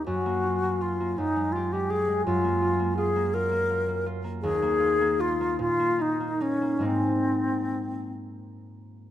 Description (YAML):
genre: classical, impressionist duo for alto flute and harp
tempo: 46-56 BPM (dotted quarters)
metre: 6/8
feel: rubato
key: Ab major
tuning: A4 = 440 Hz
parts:
  - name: bright alto flute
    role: melody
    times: 0.0-8.1 s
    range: C4 to Bb4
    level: -25 LUFS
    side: left 2 dB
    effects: none
  - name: concert harp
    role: accompaniment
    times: 0.0-9.1 s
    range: Eb2 to G4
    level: -28 LUFS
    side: right 1 dB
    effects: none
room: moderate scoring stage reverb, RT60 1.7 s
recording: close, detailed microphones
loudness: -24 LUFS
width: side -12 dB against mid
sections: 0.0-9.1 A section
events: none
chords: 0.1 Gbmaj7; 1.2 Fm9 (rootless); 2.3 Bb5/Gb; 4.4 Ebsus24; 5.6 Bb7sus4; 6.8 Abadd9